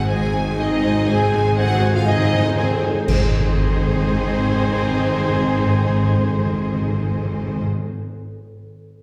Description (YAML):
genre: cinematic, heroic adventure film score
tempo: 121 BPM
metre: 4/4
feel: straight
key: Ab major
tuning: A4 = 440 Hz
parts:
  - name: rich studio violin section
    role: melody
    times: 0.0-7.6 s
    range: C5 to Ab5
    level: -32 LUFS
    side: equal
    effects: none
  - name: mellow hollow silver concert flute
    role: second line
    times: 0.0-7.6 s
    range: C5 to C6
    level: -32 LUFS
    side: equal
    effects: none
  - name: rich studio violin section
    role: second line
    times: 0.0-7.7 s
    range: C5 to Ab5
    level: -36 LUFS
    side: equal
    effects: none
  - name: bright symphonic viola section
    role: accompaniment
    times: 0.0-7.7 s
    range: Ab3 to Ab4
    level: -31 LUFS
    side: equal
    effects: none
  - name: bright trombone section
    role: sustained chords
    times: 0.0-7.6 s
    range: Eb3 to C4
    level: -34 LUFS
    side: equal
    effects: none
  - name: concert harp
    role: arpeggios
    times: 0.0-7.9 s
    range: Ab2 to C5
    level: -33 LUFS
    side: equal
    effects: none
  - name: rich symphonic cello section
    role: bass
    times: 0.0-7.6 s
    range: Ab2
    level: -26 LUFS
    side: equal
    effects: none
  - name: warm symphonic double bass section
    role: bass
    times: 0.0-7.6 s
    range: Ab1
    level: -29 LUFS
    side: equal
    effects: none
  - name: timpani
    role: percussion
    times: 0.0-7.7 s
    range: Ab2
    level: -27 LUFS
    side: equal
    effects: none
  - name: warm clarinet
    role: second line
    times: 0.1-7.6 s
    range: C5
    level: -33 LUFS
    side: equal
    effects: none
  - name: warm cor anglais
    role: second line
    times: 0.1-7.7 s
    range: Ab5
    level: -34 LUFS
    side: equal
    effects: none
  - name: mellow French horn section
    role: sustained chords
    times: 0.1-7.6 s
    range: C4 to Ab4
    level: -28 LUFS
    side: equal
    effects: none
  - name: clash cymbals and concert bass drum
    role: percussion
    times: 3.1-4.0 s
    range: none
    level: -26 LUFS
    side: equal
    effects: none
room: wet concert hall reverb, RT60 1.8 s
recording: heard from further back in the room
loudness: -19 LUFS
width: mono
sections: 0.0-3.1 A section; 3.1-7.0 B section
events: timpani fill 0.0-3.1; band accent 3.1-3.6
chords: 0.0 Ab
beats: 0.10 0.59 | 1.09 1.58 2.07 2.57 | 3.07 3.57 4.07 4.56 | 5.06 5.55 6.05 6.54